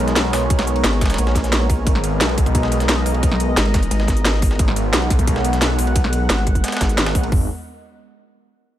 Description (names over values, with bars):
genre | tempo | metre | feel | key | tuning
dark technical drum and bass | 176 BPM | 4/4 | straight | G# minor | A4 = 440 Hz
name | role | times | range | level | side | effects
sweeping resonant pad | sustained chords | 0.0-7.5 s | G#3 to F#5 | -24 LUFS | equal | chorus, sidechain pumping
wide detuned saw bass | bass | 0.0-7.5 s | G#1 to B1 | -20 LUFS | equal | chorus, overdrive
breakbeat sampler-style drum kit | drums | 0.1-7.3 s | ride cymbal, snare drum | -28 LUFS | right 1 dB | high-pass filter on cymbals, high-pass filter on snare
drum and bass drum kit | drums | 0.1-7.2 s | hi-hat, snare drum | -21 LUFS | equal | none
drum and bass drum kit | drums | 0.5-7.4 s | hi-hat, kick drum, toms | -18 LUFS | equal | none
vowel-sweep wobble bass | bass | 0.8-7.0 s | G#1 to A#1 | -19 LUFS | equal | chorus
room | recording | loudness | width
digital ambience | none | -15 LUFS | side -12 dB against mid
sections
0.0-7.3 A section; 7.3-8.7 B section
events
drop 0.0-7.3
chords
0.0 G#madd9